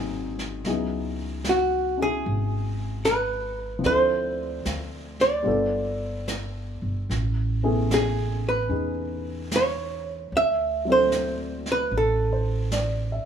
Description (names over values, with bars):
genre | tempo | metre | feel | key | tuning
jazz ballad | 75 BPM | 4/4 | swing 67% on 8ths | unclear | A4 = 440 Hz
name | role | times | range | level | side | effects
warm baby grand piano | accompaniment | 0.0-13.3 s | F3 to E5 | -30 LUFS | left 3 dB | none
upright bass | bass | 0.0-13.2 s | G1 to E2 | -29 LUFS | right 1 dB | none
jazz brush drum kit | drums | 0.4-13.3 s | brushed snare drum, hi-hat, snare drum | -35 LUFS | right 2 dB | none
archtop guitar, miked and amplified | melody | 1.5-12.7 s | F#4 to E5 | -24 LUFS | right 2 dB | none
room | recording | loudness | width
light reverb | studio ambience | -23 LUFS | side -8 dB against mid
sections
0.0-13.3 A section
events
none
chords
0.0 G#7; 0.7 C#m11; 3.9 Dm7; 5.5 G9; 7.1 Amaj9; 10.3 D9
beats
| 0.67 1.47 2.26 3.06 | 3.85 4.66 5.46 6.28 | 7.09 7.90 8.71 9.52 | 10.32 11.12 11.92 12.72